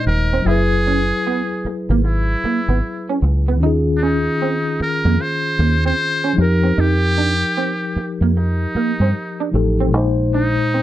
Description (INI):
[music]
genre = R&B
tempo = 76 BPM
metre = 4/4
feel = swing 63% on 16ths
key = unclear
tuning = A4 = 443 Hz
[part]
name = trumpet with metal mute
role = melody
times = 0.0-10.8 s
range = D4 to C5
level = -22 LUFS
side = equal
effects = slapback echo
[part]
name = mellow tine electric piano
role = accompaniment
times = 0.0-10.8 s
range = Bb2 to Eb5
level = -21 LUFS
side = left 3 dB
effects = medium stereo tremolo
[part]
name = electric guitar through a small old amp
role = second line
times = 0.1-10.8 s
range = Bb3 to Fb4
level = -23 LUFS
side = right 6 dB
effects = ensemble chorus
[part]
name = deep dub fingered electric bass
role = bass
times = 0.1-10.6 s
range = Eb1 to G2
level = -17 LUFS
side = equal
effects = none
[sound]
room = light reverb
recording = dark, warm production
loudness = -15 LUFS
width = side -13 dB against mid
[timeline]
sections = 0.0-10.8 A section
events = none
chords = 0.5 Gb9sus4; 3.6 Eb9sus4; 6.4 F9sus4; 9.9 Bb9sus4